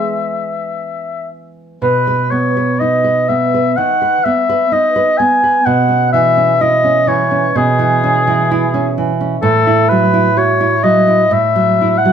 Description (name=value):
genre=romantic duo for oboe and classical guitar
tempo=56-65 BPM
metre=4/4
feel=rubato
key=B major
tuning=A4 = 443 Hz
part: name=warm oboe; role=melody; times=0.0-12.1 s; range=G#4 to G#5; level=-13 LUFS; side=left 2 dB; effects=none
part: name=nylon-string guitar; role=accompaniment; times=0.0-12.1 s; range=A2 to B4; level=-15 LUFS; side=right 3 dB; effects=none
room=moderate studio reverb, RT60 0.7 s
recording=band playing live in one room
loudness=-11 LUFS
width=side -8 dB against mid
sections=0.0-1.8 A section; 1.8-12.1 B section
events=none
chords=0.0 E; 1.8 B; 5.7 C#m/B; 9.4 F#m7/A